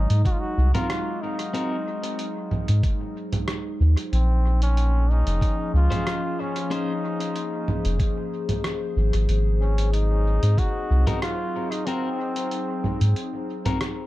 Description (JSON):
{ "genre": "ambient dub", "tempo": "93 BPM", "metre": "4/4", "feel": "straight", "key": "unclear", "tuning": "A4 = 440 Hz", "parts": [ { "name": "trombone with straight mute", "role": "melody", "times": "0.0-13.2 s", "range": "C4 to Gb4", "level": "-31 LUFS", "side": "equal", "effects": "dub echo" }, { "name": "warbly tape-like pad", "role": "sustained chords", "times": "0.0-14.1 s", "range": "F3 to C5", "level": "-30 LUFS", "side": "left 2 dB", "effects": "chorus, built-in reverb" }, { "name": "soft dub sub bass", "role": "bass", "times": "0.0-13.1 s", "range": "F1 to Ab2", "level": "-19 LUFS", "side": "equal", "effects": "tube saturation" }, { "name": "lo-fi sampler-style drum kit", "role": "drums", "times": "0.1-13.9 s", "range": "congas, hi-hat, rim click", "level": "-30 LUFS", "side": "right 1 dB", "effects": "dub echo" }, { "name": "electronic kick drum", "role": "drums", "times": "0.2-10.7 s", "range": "none", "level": "-23 LUFS", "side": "equal", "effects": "none" }, { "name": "electric guitar at the edge of break-up", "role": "stabs", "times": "0.7-1.8, 5.9-6.9, 11.1-13.8 s", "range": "C4 to C5", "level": "-33 LUFS", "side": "left 2 dB", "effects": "spring reverb, dub echo" } ], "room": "little or no reverb", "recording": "echo-heavy mix", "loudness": "-21 LUFS", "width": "side -16 dB against mid", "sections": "0.0-14.1 A section", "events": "break 13.2-14.1", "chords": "0.0 Ab7; 4.1 Bbm9; 9.3 Ab7", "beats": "0.26 0.90 | 1.55 2.19 2.84 3.48 | 4.13 4.77 5.42 6.06 | 6.71 7.35 8.00 8.64 | 9.29 9.93 10.58 11.22 | 11.87 12.51 13.16 13.80" }